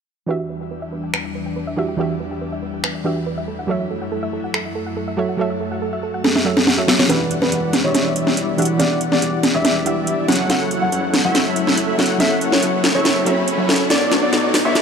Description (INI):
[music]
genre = future bass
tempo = 141 BPM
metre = 4/4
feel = half-time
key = unclear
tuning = A4 = 438 Hz
[part]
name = soft round pluck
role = accompaniment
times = 0.3-13.9 s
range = E3 to F#5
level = -25 LUFS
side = right 3 dB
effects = chorus, ping-pong delay
[part]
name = airy breathy pad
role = sustained chords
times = 0.3-14.8 s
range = E2 to A4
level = -27 LUFS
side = left 2 dB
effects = chorus
[part]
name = soft round pluck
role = arpeggios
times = 0.3-7.1, 13.9-14.8 s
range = A4 to E6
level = -29 LUFS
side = right 4 dB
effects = chorus, ping-pong delay
[part]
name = trap drum kit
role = drums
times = 1.1-14.8 s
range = finger snaps, hi-hat, snare drum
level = -18 LUFS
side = equal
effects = overdrive
[part]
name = warm grand piano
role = melody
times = 7.1-14.8 s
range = B4 to F#5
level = -24 LUFS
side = left 1 dB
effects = vintage 12-bit sampler grit, low-pass filter, ping-pong delay
[part]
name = big bright polysynth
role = riff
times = 7.1-14.8 s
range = E3 to B5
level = -21 LUFS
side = left 1 dB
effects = tremolo
[part]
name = fat analog bass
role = bass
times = 7.1-14.8 s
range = E1 to B1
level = -28 LUFS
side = equal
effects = high-pass filter
[part]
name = riser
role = sound effects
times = 10.1-14.8 s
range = none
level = -26 LUFS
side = right 1 dB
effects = none
[sound]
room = light reverb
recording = high-pass filter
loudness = -16 LUFS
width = side -6 dB against mid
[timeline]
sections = 0.3-7.1 A section; 7.1-14.8 B section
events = filter sweep on synth arpeggio sound 0.3-7.1; drum fill 6.2-7.1, 7.1-14.8; build-up 7.1-14.8; filter sweep on analog polysynth 7.1-14.8; filter sweep on grand piano 7.1-14.8; riser 10.1-14.8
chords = 0.3 Em7; 3.5 F#m7; 7.1 Em7; 10.3 F#m7; 13.9 Bm7